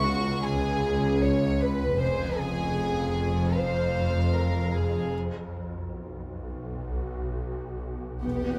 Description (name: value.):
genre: cinematic.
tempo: free time.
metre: none.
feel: none.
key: unclear.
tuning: A4 = 439 Hz.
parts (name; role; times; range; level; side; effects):
warm symphonic violin section; melody; 0.0-8.6 s; F5 to C#6; -37 LUFS; equal; none.
warm studio violin section; second line; 0.0-8.6 s; F#4 to C#5; -32 LUFS; equal; none.
dark symphonic double bass section; bass; 0.0-8.6 s; E1 to C#2; -34 LUFS; equal; none.
rich symphonic cello section; bass; 0.0-8.6 s; C#2 to F2; -33 LUFS; equal; none.
swarming drone; drone; 0.0-8.6 s; B1 to F2; -33 LUFS; equal; built-in reverb.
felt-muted upright piano; texture; 0.0-2.0 s; B3 to B4; -50 LUFS; equal; none.
dark studio viola section; accompaniment; 8.3-8.6 s; B3; -31 LUFS; equal; none.
room: light reverb.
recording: close, detailed microphones.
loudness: -28 LUFS.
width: mono.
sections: 0.0-8.2 A section.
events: break 5.1-8.2.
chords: 0.0 C#5; 2.0 Fm; 5.1 N.C..